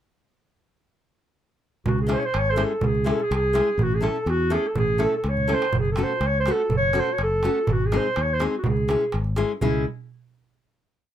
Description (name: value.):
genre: balkan folk, Balkan wedding band.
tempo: 124 BPM.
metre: 2/4.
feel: straight.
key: C# harmonic minor.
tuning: A4 = 440 Hz.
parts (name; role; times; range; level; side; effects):
mellow clarinet; melody; 1.9-9.9 s; E4 to C#5; -24 LUFS; right 1 dB; none.
fingered electric bass; bass; 1.9-9.8 s; F#1 to E2; -25 LUFS; left 1 dB; none.
darbuka; percussion; 1.9-9.8 s; none; -28 LUFS; right 4 dB; none.
nylon-string guitar; accompaniment; 2.1-9.8 s; G#3 to A4; -26 LUFS; left 2 dB; none.
room: light reverb.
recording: close, detailed microphones.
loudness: -20 LUFS.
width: side -10 dB against mid.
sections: 1.9-9.6 A section; 9.6-10.6 final chord.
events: drum fill 5.4-5.7.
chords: 1.9 C#m; 3.8 A; 5.7 F#m; 7.7 G#; 8.6 C#m.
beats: | 1.86 2.34 | 2.82 3.31 | 3.79 4.28 | 4.76 5.25 | 5.73 6.22 | 6.71 7.19 | 7.68 8.16 | 8.65 9.13 | 9.62.